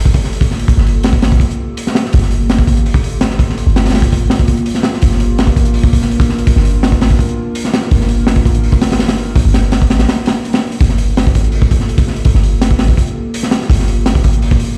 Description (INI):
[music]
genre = drum and bass, jungle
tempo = 166 BPM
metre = 4/4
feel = straight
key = G minor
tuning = A4 = 441 Hz
[part]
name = warbly tape-like pad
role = sustained chords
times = 0.0-14.8 s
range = Bb3 to Bb4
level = -24 LUFS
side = equal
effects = chorus, built-in reverb
[part]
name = warm 808-style bass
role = bass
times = 0.0-14.8 s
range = G1 to A1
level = -17 LUFS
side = equal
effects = none
[part]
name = crunchy breakbeat drum kit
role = drums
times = 0.1-14.7 s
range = hi-hat, kick drum, snare drum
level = -15 LUFS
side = equal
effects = none
[sound]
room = light reverb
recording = played on a big sound system in a bare room, stone room reverb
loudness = -13 LUFS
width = mono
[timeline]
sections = 0.0-14.8 A section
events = break 10.1-10.8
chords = 0.0 Gm9; 5.0 Bb/G; 10.8 Gm9